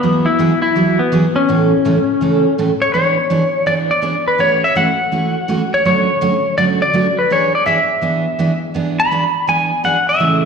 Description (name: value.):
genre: country.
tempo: 165 BPM.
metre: 4/4.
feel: swing 66% on 8ths.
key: unclear.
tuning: A4 = 438 Hz.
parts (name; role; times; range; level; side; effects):
clean lap steel guitar; melody; 0.0-10.5 s; B3 to B5; -15 LUFS; left 2 dB; slapback echo.
picked steel-string acoustic guitar; accompaniment; 0.0-10.4 s; A2 to A4; -17 LUFS; right 4 dB; slapback echo.
room: moderate lush hall reverb, RT60 2.3 s.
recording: live gig heard through the venue's PA, recital hall reverb.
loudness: -13 LUFS.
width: side -6 dB against mid.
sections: 0.0-2.9 A section; 2.9-10.5 B section.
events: none.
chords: 0.0 Eadd9; 1.5 A; 2.9 E6; 4.4 A6/E; 5.8 Dmaj7; 7.3 E7.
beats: | 0.03 0.39 0.76 1.12 | 1.48 1.85 2.21 2.57 | 2.94 3.30 3.67 4.03 | 4.39 4.75 5.12 5.48 | 5.84 6.21 6.57 6.93 | 7.30 7.66 8.02 8.39 | 8.75 9.11 9.47 9.84 | 10.20.